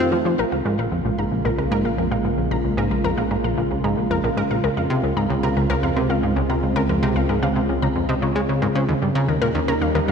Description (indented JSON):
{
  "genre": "ambient, sequencer-driven space music",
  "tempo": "113 BPM",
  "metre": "4/4",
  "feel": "straight",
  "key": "Bb dorian",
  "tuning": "A4 = 438 Hz",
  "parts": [
    { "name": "lush unison pad", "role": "sustained chords", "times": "0.0-10.1 s", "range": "Db3 to F4", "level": "-23 LUFS", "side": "right 1 dB", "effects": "chorus" },
    { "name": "wide unison pluck", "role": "arpeggios", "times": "0.0-10.1 s", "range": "F3 to Bb5", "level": "-26 LUFS", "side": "left 1 dB", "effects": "auto-pan, tape echo" },
    { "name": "plucky analog bass", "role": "riff", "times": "0.0-10.1 s", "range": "Bb1 to C4", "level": "-22 LUFS", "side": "equal", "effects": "tape echo" },
    { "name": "warm sub bass", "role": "bass", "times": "0.0-10.1 s", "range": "Bb1 to F2", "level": "-29 LUFS", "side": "equal", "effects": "none" }
  ],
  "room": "wet lush hall reverb, RT60 2.9 s",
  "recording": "none",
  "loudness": "-18 LUFS",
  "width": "side -6 dB against mid",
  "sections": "0.4-10.1 A section",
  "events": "none",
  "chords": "0.4 Bbm7; 4.6 Dbmaj7; 8.9 Eb7",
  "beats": "| 0.39 0.92 1.45 1.98 | 2.51 3.04 3.58 4.11 | 4.64 5.17 5.70 6.23 | 6.76 7.29 7.82 8.36 | 8.89 9.42 9.95"
}